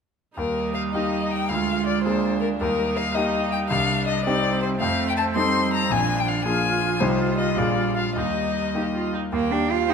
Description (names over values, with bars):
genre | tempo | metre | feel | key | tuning
quick classical-period movement for piano quartet | 108 BPM (dotted quarters) | 6/8 | rubato | Eb major | A4 = 440 Hz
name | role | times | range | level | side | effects
rich violin | melody | 0.4-9.9 s | Bb4 to C6 | -25 LUFS | left 6 dB | none
clear cello | second line | 0.4-9.9 s | F3 to F4 | -26 LUFS | right 6 dB | none
bright grand piano | accompaniment | 0.4-9.9 s | Bb1 to A4 | -26 LUFS | left 2 dB | none
rich viola | accompaniment | 0.4-9.9 s | C4 to C5 | -29 LUFS | right 4 dB | none
room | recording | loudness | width
moderate recital hall reverb, RT60 1.5 s | none | -20 LUFS | side -6 dB against mid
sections
0.4-9.3 A section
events
none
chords
0.4 Eb; 1.5 Bb7/D; 2.6 Eb; 3.7 Cm; 4.8 F7; 5.9 Bb7; 7.0 Cm; 7.6 Bb7; 8.2 Eb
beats
| 0.37 0.94 | 1.50 2.05 | 2.61 3.16 | 3.71 4.27 | 4.81 5.36 | 5.91 6.46 | 7.01 7.58 | 8.16 8.75 | 9.33 9.90